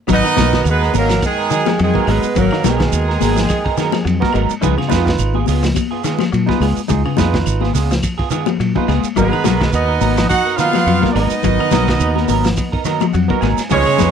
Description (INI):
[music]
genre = afrobeat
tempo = 106 BPM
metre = 4/4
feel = swing 55% on 16ths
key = G# dorian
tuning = A4 = 440 Hz
[part]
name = clear horn section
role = melody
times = 0.1-4.3, 9.2-14.1 s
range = G#3 to F#5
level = -18 LUFS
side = right 3 dB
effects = none
[part]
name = breathy tenor saxophone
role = second line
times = 0.1-4.3, 9.2-14.1 s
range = D#3 to D#4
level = -23 LUFS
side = right 8 dB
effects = none
[part]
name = barky tine electric piano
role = accompaniment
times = 0.1-14.1 s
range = B3 to G#5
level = -24 LUFS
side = right 12 dB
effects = none
[part]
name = clean electric guitar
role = arpeggios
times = 0.1-14.1 s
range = C#3 to G#3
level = -20 LUFS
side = left 7 dB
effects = analog chorus, slapback echo
[part]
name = semi-hollow electric guitar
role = stabs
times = 0.1-14.1 s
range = E#3 to A#4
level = -22 LUFS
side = right 10 dB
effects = analog chorus
[part]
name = fingered electric bass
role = bass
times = 0.1-14.1 s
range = G#1 to A#2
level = -18 LUFS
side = equal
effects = none
[part]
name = crunchy breakbeat drum kit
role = drums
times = 0.1-14.1 s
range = hi-hat, kick drum, ride cymbal, snare drum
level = -22 LUFS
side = equal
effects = none
[part]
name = congas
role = percussion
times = 0.1-14.1 s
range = none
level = -22 LUFS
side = left 24 dB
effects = none
[part]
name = shekere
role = percussion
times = 0.1-14.1 s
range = none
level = -26 LUFS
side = right 12 dB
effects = none
[part]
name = claves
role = percussion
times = 0.2-14.0 s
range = none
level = -35 LUFS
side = left 4 dB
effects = none
[sound]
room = little or no reverb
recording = dry, close 1970s-style studio recording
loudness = -13 LUFS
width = side -7 dB against mid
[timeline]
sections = 0.1-14.1 A section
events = tine electric piano fill 12.6-13.7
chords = 0.1 G#m9; 4.6 C#7; 9.2 G#m9